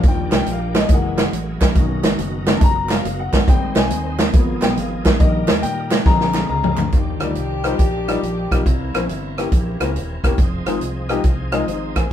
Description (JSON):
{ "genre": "uptempo gospel", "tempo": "139 BPM", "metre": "4/4", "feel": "swing 66% on 8ths", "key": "Eb major", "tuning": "A4 = 439 Hz", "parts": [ { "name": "warm grand piano", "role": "accompaniment", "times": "0.0-12.1 s", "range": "C3 to A#5", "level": "-23 LUFS", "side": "left 4 dB", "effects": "none" }, { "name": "bright tonewheel organ", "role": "sustained chords", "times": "0.0-12.1 s", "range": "B2 to C5", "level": "-31 LUFS", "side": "right 2 dB", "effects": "slow rotary speaker, chorus vibrato" }, { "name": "fingered electric bass", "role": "bass", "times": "0.0-12.1 s", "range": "Eb1 to Bb2", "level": "-25 LUFS", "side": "equal", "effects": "none" }, { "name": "swinging big-band drum kit", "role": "drums", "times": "0.0-12.0 s", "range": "hi-hat, kick drum, rim click, snare drum, toms", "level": "-17 LUFS", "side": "equal", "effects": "none" }, { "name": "group handclap", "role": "percussion", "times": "0.3-6.8 s", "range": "none", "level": "-33 LUFS", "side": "right 4 dB", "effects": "none" }, { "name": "mellow horn section", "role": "melody", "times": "6.9-10.2 s", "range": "G3 to G4", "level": "-28 LUFS", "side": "left 3 dB", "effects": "none" } ], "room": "moderate studio reverb, RT60 0.6 s", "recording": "band playing live in one room", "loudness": "-16 LUFS", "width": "side -10 dB against mid", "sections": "0.0-6.9 A section; 6.9-12.1 B section", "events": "grand piano solo 0.0-6.9; drum fill 6.1-6.9", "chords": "0.0 Ebmaj7; 0.9 Gb9; 1.8 Bmaj7; 3.5 Abmaj7; 4.3 Abm6; 5.2 Eb/Bb; 6.1 Bb7; 6.9 Ebmaj9; 8.7 C7b9; 10.4 Fm7" }